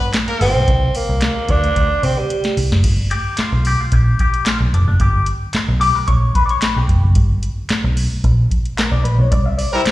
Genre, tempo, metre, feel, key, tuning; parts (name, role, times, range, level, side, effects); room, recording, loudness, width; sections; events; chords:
funk; 111 BPM; 4/4; straight; A4 = 439 Hz
warm horn section; second line; 0.0-0.5, 9.7-9.8 s; G3 to Bb4; -21 LUFS; equal; slapback echo
soft vintage rhythm box; drums; 0.1-9.9 s; crash cymbal, handclaps, hi-hat, kick drum, snare drum; -19 LUFS; equal
raspy tenor saxophone; melody; 0.4-2.6 s; G3 to D4; -18 LUFS; right 2 dB; slapback echo
vintage muted picked electric bass; bass; 0.4-9.9 s; F1 to C3; -16 LUFS; equal
clean electric guitar; accompaniment; 3.1-9.9 s; D4 to E5; -20 LUFS; left 4 dB; wah, wide subtle chorus, slapback echo
light reverb; live gig heard through the venue's PA, recital hall reverb; -14 LUFS; side -16 dB against mid
0.0-2.8 A section; 2.8-9.9 B section
break 0.0-2.8; drum fill 1.8-2.8; clean electric guitar solo 2.8-9.9; band accent 9.3-9.9
0.0 G(#9); 0.7 Csus2; 2.8 G(#9); 9.3 Cadd9